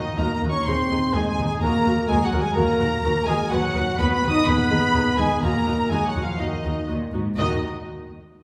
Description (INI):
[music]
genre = cinematic, heroic adventure film score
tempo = 126 BPM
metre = 4/4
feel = straight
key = Eb minor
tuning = A4 = 439 Hz
[part]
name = rich symphonic violin section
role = melody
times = 0.0-7.6 s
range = Eb5 to D#6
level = -32 LUFS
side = equal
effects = none
[part]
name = warm symphonic violin section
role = second line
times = 0.0-7.7 s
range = Eb5 to D#6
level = -32 LUFS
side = equal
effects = none
[part]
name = warm symphonic viola section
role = accompaniment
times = 0.0-7.6 s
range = Eb4 to B4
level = -33 LUFS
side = equal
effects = none
[part]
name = warm French horn section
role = sustained chords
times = 0.0-7.6 s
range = Eb3 to D#4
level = -27 LUFS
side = equal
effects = none
[part]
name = mellow trumpet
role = stabs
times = 0.0-7.6 s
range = Eb4 to Eb5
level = -30 LUFS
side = equal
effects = none
[part]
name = rich symphonic double bass section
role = bass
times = 0.0-7.6 s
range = Eb2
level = -30 LUFS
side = equal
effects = none
[part]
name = warm symphonic cello section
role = bass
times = 0.0-7.6 s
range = Eb2 to Bb2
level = -32 LUFS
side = equal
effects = none
[sound]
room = wet recital hall reverb, RT60 1.8 s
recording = recorded in a church or concert hall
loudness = -22 LUFS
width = mono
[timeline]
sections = 0.0-7.4 A section; 7.4-8.4 B section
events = none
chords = 0.0 Ebm; 0.7 Ab/Eb; 1.6 Ebm; 3.5 B/D#; 4.5 Abm/Eb; 5.4 Ebm